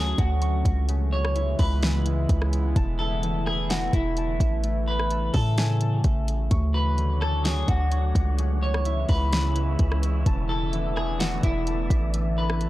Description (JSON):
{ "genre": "hip hop, atmospheric cloud-rap", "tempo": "128 BPM", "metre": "4/4", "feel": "half-time", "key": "D lydian", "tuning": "A4 = 440 Hz", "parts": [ { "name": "clean electric guitar", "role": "melody", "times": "0.0-12.7 s", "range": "E4 to C#5", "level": "-30 LUFS", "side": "equal", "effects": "lush chorus, analog delay" }, { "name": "warbly tape-like pad", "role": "sustained chords", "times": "0.0-12.7 s", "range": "C#3 to C#5", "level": "-31 LUFS", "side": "equal", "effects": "chorus, built-in reverb, sidechain pumping" }, { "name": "concert harp", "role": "arpeggios", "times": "0.0-12.7 s", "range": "C#3 to C#6", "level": "-36 LUFS", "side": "left 1 dB", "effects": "analog delay" }, { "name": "warm 808-style bass", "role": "bass", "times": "0.0-12.7 s", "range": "E1 to A2", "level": "-24 LUFS", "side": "equal", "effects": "none" }, { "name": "smooth R&B drum kit", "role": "drums", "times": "0.2-12.7 s", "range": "hi-hat, kick drum, rim click, snare drum", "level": "-25 LUFS", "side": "equal", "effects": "none" }, { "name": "wind-like tuned noise texture", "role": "texture", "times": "7.1-12.7 s", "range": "C#4 to G#5", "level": "-40 LUFS", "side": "equal", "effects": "built-in reverb" } ], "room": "digital ambience", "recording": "dry, gritty hardware recording, cassette tape", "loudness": "-22 LUFS", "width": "side -16 dB against mid", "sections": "0.0-12.7 A section", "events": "none", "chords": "0.0 Dmaj7; 0.9 C#m7; 2.8 E7sus4; 4.6 Amaj7; 6.5 Dmaj7; 8.4 C#m7; 10.3 E7sus4; 12.1 Amaj7" }